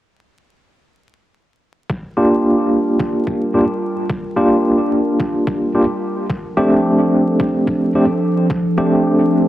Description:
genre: glitch hop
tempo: 109 BPM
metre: 4/4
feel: swing 57% on 16ths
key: G minor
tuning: A4 = 439 Hz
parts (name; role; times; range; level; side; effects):
- warbly tape-like pad; sustained chords; 2.4-9.5 s; F3 to Bb4; -21 LUFS; equal; chorus, built-in reverb, sidechain pumping
- electronic kick drum; drums; 1.9-8.6 s; none; -23 LUFS; equal; high-pass filter on kick
- tine electric piano; stabs; 2.2-9.5 s; A3 to G4; -15 LUFS; equal; medium tremolo, vintage 12-bit sampler grit, sidechain pumping, low-pass filter, tape echo
room: wet spring reverb, RT60 2.9 s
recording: echo-heavy mix, vinyl crackle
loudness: -14 LUFS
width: side -14 dB against mid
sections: 1.9-9.5 A section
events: filter sweep on ambient pad 1.9-9.5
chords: 1.9 Gm7; 6.3 F6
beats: | 1.90 2.45 3.00 3.55 | 4.10 4.65 5.20 5.75 | 6.30 6.85 7.40 7.95 | 8.50 9.05

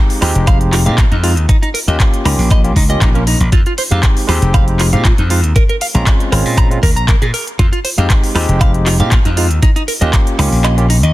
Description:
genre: nu-disco, nu disco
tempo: 118 BPM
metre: 4/4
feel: straight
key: F minor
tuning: A4 = 440 Hz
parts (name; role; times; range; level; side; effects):
- barky tine electric piano; accompaniment; 0.0-10.9 s; Ab3 to Bb4; -20 LUFS; equal; medium stereo tremolo, sidechain pumping, digital delay
- pop drum kit; drums; 0.1-11.1 s; handclaps, hi-hat, woodblock; -20 LUFS; equal; studio ambience
- direct-recorded clean electric guitar; riff; 0.2-11.1 s; Db4 to Bb5; -21 LUFS; right 2 dB; wide subtle chorus, digital delay
- slap bass; bass; 0.2-11.1 s; F1 to Bb2; -13 LUFS; equal; sidechain pumping
- electronic kick drum; drums; 0.5-10.2 s; none; -12 LUFS; equal; studio ambience
room: digital ambience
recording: dense, heavily limited modern master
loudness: -10 LUFS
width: side -17 dB against mid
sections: 0.0-11.1 A section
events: kick drops out 10.6-11.1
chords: 0.0 Fm7; 1.5 Eb7; 3.5 Fm7; 5.6 Bbm7; 7.6 Fm7; 9.6 Eb7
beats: 0.47 0.98 | 1.49 2.00 2.51 3.02 | 3.52 4.03 4.54 5.05 | 5.56 6.07 6.57 7.08 | 7.59 8.10 8.61 9.12 | 9.62 10.13 10.64

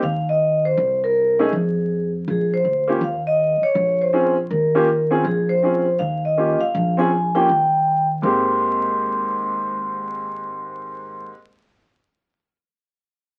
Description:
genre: jazz, small-group swing and bop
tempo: 161 BPM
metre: 4/4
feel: swing 64% on 8ths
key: Ab major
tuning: A4 = 440 Hz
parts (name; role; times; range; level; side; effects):
- vibraphone with medium mallets; melody; 0.0-11.3 s; Ab4 to C6; -22 LUFS; equal; none
- clear upright piano; accompaniment; 0.0-11.3 s; Ab2 to Ab4; -25 LUFS; equal; none
- upright bass; bass; 0.0-11.3 s; Ab1 to F2; -28 LUFS; equal; none
room: moderate studio reverb, RT60 0.6 s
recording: very old 78 rpm record, vinyl crackle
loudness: -20 LUFS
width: mono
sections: 0.0-2.3 A section; 2.3-8.2 B section; 8.2-11.2 C section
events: none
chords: 0.0 N.C.; 0.8 Bbm11/C; 1.5 Fm; 2.3 Bbmadd9; 3.0 N.C.; 3.8 Bbm9; 4.5 Eb7; 5.2 Bbm9; 6.0 Eb7; 6.7 Bbm9; 7.5 Eb; 8.2 Abmaj7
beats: 0.03 0.40 | 0.78 1.15 1.52 1.89 | 2.27 2.64 3.01 3.38 | 3.75 4.13 4.50 4.87 | 5.25 5.62 5.99 6.36 | 6.74 7.11 7.48 7.86 | 8.23 8.60 8.97 9.35 | 9.72 10.10 10.47 10.84

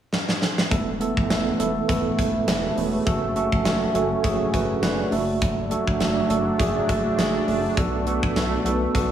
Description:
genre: 1980s-style pop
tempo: 102 BPM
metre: 4/4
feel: swing 55% on 16ths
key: unclear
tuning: A4 = 440 Hz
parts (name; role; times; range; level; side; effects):
- gated 80s drum kit; drums; 0.1-9.1 s; hi-hat, kick drum, snare drum; -25 LUFS; equal; gated reverb
- tine electric piano; accompaniment; 0.7-9.1 s; A3 to D5; -23 LUFS; right 2 dB; medium stereo tremolo
- sweeping resonant pad; sustained chords; 1.3-9.1 s; E3 to D4; -29 LUFS; right 1 dB; chorus
- rubbery square bass; bass; 0.7-9.1 s; E1 to B1; -29 LUFS; equal; none
room: moderate lush hall reverb, RT60 1.7 s, studio reverb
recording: small room ambience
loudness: -20 LUFS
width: side -10 dB against mid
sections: 0.7-9.1 A section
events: drum fill 0.1-0.7; tine electric piano fill 4.5-5.4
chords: 0.0 N.C.; 0.7 Esus4; 3.1 F#m; 5.1 D/F#; 7.8 Bm7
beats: 0.12 | 0.71 1.30 1.89 2.48 | 3.06 3.65 4.24 4.83 | 5.42 6.01 6.59 7.18 | 7.77 8.36 8.95

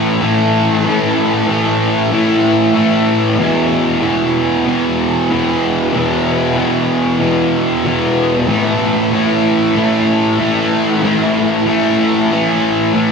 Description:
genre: rock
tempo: 94 BPM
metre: 4/4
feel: straight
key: unclear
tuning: A4 = 442 Hz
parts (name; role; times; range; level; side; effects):
- fuzz guitar; solo; 0.0-13.1 s; E2 to A3; -12 LUFS; equal; distortion, lush chorus, tape echo
room: wet cathedral reverb, RT60 6.1 s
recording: dreamy mix soaked in reverb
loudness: -12 LUFS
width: side -5 dB against mid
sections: 0.0-13.1 A section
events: none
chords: 0.0 A5; 3.4 E5; 8.5 A5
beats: 0.22 | 0.86 1.49 2.12 2.76 | 3.39 4.03 4.67 5.30 | 5.94 6.57 7.21 7.85 | 8.48 9.12 9.76 10.39 | 11.03 11.67 12.31 12.95

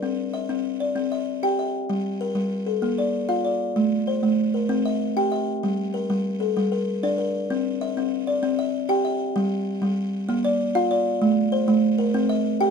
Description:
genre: southern african traditional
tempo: 128 BPM (dotted quarters)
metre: 12/8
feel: straight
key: unclear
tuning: A4 = 441 Hz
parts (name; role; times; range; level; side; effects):
- buzzing kalimba; solo; 0.0-12.7 s; G3 to G5; -21 LUFS; equal; none
room: moderate studio reverb, RT60 0.6 s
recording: close, detailed microphones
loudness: -21 LUFS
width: side -6 dB against mid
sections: 0.0-9.4 A section; 9.4-12.7 B section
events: none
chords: 0.0 C; 1.9 Gm; 2.8 Bb; 3.8 Am; 4.7 C; 5.6 Gm; 7.5 C; 9.4 N.C.; 10.3 Bb; 11.2 Am; 12.1 C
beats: | 0.02 0.49 0.95 1.42 | 1.89 2.36 2.83 3.29 | 3.76 4.23 4.70 5.16 | 5.63 6.10 6.56 7.03 | 7.50 7.96 8.43 8.90 | 9.36 9.83 10.29 10.75 | 11.22 11.68 12.14 12.61

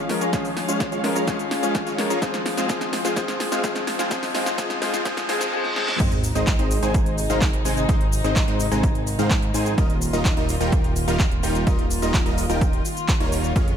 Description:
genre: EDM, festival progressive house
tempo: 127 BPM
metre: 4/4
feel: straight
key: Ab major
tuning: A4 = 442 Hz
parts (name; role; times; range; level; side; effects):
- clear concert grand piano; accompaniment; 0.0-6.0 s; F3 to Bb4; -27 LUFS; left 3 dB; sidechain pumping, digital delay
- dark studio string section; sustained chords; 0.0-13.8 s; C3 to F5; -30 LUFS; left 1 dB; sidechain pumping
- supersaw stab; riff; 0.0-13.7 s; G3 to Bb5; -26 LUFS; equal; sidechain pumping, digital delay
- riser, reverse cymbal and sub drop; sound effects; 1.4-7.9 s; none; -32 LUFS; right 1 dB; none
- big-room dance drum kit; drums; 0.1-13.8 s; crash cymbal, handclaps, hi-hat, shaker, snare drum; -28 LUFS; equal; overdrive
- electronic kick drum; drums; 0.3-13.7 s; none; -23 LUFS; equal; overdrive
- fat analog bass; bass; 6.0-13.8 s; Eb1 to Ab2; -26 LUFS; equal; sidechain pumping
room: light reverb, digital ambience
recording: high-pass filter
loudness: -19 LUFS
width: side -8 dB against mid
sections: 0.0-6.0 A section; 6.0-13.8 B section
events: build-up 0.0-6.0; drum fill 0.0-5.5, 5.6-6.0; filter sweep on supersaw synth 0.0-6.0; filter sweep 0.0-6.0; reverse cymbal 5.1-6.0; drop 6.0-13.8; impact 6.0-7.9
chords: 0.0 Db/F; 2.2 Fm; 6.0 Ab; 9.8 Ebadd9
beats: | 0.33 0.80 1.27 1.75 | 2.22 2.69 3.17 3.64 | 4.11 4.58 5.05 5.53 | 6.00 6.47 6.95 7.42 | 7.89 8.36 8.83 9.31 | 9.78 10.25 10.72 11.20 | 11.67 12.14 12.61 13.09 | 13.56

